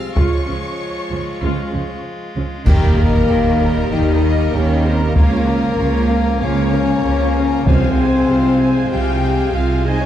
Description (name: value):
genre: cinematic, epic orchestral film score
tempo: 96 BPM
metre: 4/4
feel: straight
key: unclear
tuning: A4 = 440 Hz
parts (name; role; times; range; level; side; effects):
- clear symphonic violin section; melody; 0.0-10.1 s; Bb4 to F6; -28 LUFS; left 4 dB; none
- rich symphonic violin section; second line; 0.0-10.1 s; Db5 to Bb5; -31 LUFS; left 3 dB; none
- dark French horn section; sustained chords; 0.0-10.1 s; Bb3 to G4; -19 LUFS; left 3 dB; none
- pipe organ, clarinet reed; sustained chords; 0.0-10.1 s; G3 to F5; -30 LUFS; left 1 dB; none
- warm trombone section; sustained chords; 0.0-10.1 s; F3 to Bb3; -28 LUFS; right 2 dB; none
- warm studio viola section; accompaniment; 0.2-10.1 s; F3 to Ab5; -26 LUFS; right 2 dB; none
- rich studio cello section; bass; 0.2-10.1 s; C3 to Eb3; -24 LUFS; right 2 dB; none
- rich symphonic double bass section; bass; 0.2-10.1 s; C2 to Eb2; -20 LUFS; right 2 dB; none
- taiko ensemble; drums; 0.2-8.2 s; none; -16 LUFS; equal; none
- clash cymbals and concert bass drum; percussion; 2.7-3.9 s; none; -21 LUFS; equal; none
- sub drop; sound effects; 3.0-5.2 s; none; -26 LUFS; equal; none
- timpani; percussion; 7.7-8.6 s; C3; -23 LUFS; equal; none
room: wet scoring stage reverb, RT60 1.6 s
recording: dark, warm production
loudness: -14 LUFS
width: side -11 dB against mid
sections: 0.0-2.7 A section; 2.7-10.1 B section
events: band accent 2.7-3.3; impact 2.7-5.2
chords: 0.2 Db; 2.7 Eb; 5.2 Bbm/Db; 7.7 Fm/C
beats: | 0.16 0.79 1.41 2.04 | 2.66 3.29 3.91 4.54 | 5.16 5.79 6.41 7.04 | 7.66 8.29 8.91 9.54